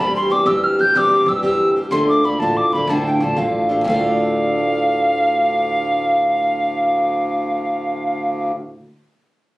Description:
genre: celtic folk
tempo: 124 BPM (dotted quarters)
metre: 12/8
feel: straight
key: D minor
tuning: A4 = 440 Hz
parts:
  - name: mellow hollow wooden whistle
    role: melody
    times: 0.0-8.5 s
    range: F5 to G6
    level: -18 LUFS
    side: equal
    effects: none
  - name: picked old ladder-braced acoustic guitar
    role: accompaniment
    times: 0.0-8.8 s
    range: D2 to G4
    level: -21 LUFS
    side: equal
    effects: none
  - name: upright bass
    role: bass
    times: 0.0-8.7 s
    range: A1 to D3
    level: -30 LUFS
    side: equal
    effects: none
  - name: hand-pumped harmonium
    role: drone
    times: 0.0-8.5 s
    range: D2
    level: -26 LUFS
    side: equal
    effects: none
room: moderate studio reverb, RT60 0.5 s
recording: recorded on a phone in the room, club reverb, compression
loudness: -15 LUFS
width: side -19 dB against mid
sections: 0.0-3.9 A section; 3.9-7.7 B section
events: none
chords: 0.0 C; 1.9 Dm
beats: 0.47 0.95 1.43 | 1.92 2.40 2.88 3.37 | 3.85 4.34 4.82 5.30 | 5.79 6.27 6.75 7.24

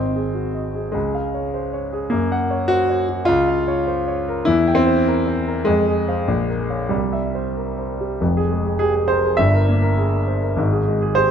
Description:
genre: classical, virtuoso piano study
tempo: 101 BPM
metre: 2/4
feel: rubato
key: F minor from 3.3 s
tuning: A4 = 440 Hz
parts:
  - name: warm grand piano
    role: solo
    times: 0.0-11.3 s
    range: F1 to G5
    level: -17 LUFS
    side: equal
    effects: none
room: moderate concert hall reverb, RT60 1.9 s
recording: close, detailed microphones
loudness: -17 LUFS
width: side -8 dB against mid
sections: 0.0-8.2 A section; 8.2-11.3 B section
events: none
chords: 0.0 Ab; 0.9 Db; 2.1 Gb; 3.3 Bbm/Db; 4.5 C7/E; 5.7 Fm; 6.3 Bbm7; 6.9 C; 8.2 Fm; 9.4 C7/G; 10.6 Abmaj7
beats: 0.35 | 0.95 1.54 | 2.12 2.70 | 3.28 3.87 | 4.46 5.05 | 5.66 6.28 | 6.91 7.56 | 8.20 8.80 | 9.39 9.98 | 10.58 11.17

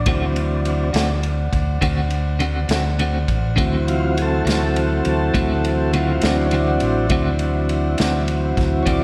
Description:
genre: slow blues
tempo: 68 BPM (dotted quarters)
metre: 12/8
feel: straight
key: D mixolydian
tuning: A4 = 442 Hz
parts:
  - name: mellow horn section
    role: sustained chords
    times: 0.0-9.0 s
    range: C5 to F#5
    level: -33 LUFS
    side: equal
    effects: none
  - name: tonewheel organ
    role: sustained chords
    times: 0.0-9.0 s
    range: E3 to D5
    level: -24 LUFS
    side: equal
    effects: slow rotary speaker
  - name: fingered electric bass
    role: bass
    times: 0.0-9.0 s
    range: A1 to D2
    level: -24 LUFS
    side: equal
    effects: none
  - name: clean electric guitar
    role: accompaniment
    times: 0.1-9.0 s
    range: D3 to F#4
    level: -28 LUFS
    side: equal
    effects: tremolo, slapback echo
  - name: vintage drum kit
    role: drums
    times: 0.1-9.0 s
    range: kick drum, ride cymbal, snare drum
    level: -27 LUFS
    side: equal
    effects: none
room: moderate concert hall reverb, RT60 2.4 s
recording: big arena sound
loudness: -19 LUFS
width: mono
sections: 0.0-9.0 A section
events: tonewheel organ solo 0.0-9.0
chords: 0.0 D7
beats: | 0.07 0.94 1.82 2.70 | 3.58 4.46 5.34 6.22 | 7.11 7.99 8.87

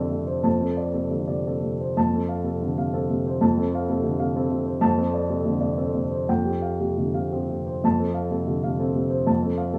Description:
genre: neoclassical minimalist piano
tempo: 114-131 BPM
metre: 3/4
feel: rubato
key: unclear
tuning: A4 = 440 Hz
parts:
  - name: warm grand piano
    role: solo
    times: 0.0-9.8 s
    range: F2 to A5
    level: -24 LUFS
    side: equal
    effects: none
room: wet stone room reverb, RT60 1.3 s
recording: band playing live in one room, small room ambience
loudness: -24 LUFS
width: mono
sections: 0.0-7.8 A section; 7.8-9.8 A section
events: none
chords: 0.0 Dm7/F; 6.3 Fsus2; 7.8 Dm7/F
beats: | 0.46 0.96 1.46 | 1.97 2.46 2.95 | 3.43 3.90 4.36 | 4.83 5.29 5.77 | 6.28 6.80 7.33 | 7.84 8.33 8.81 | 9.29 9.75

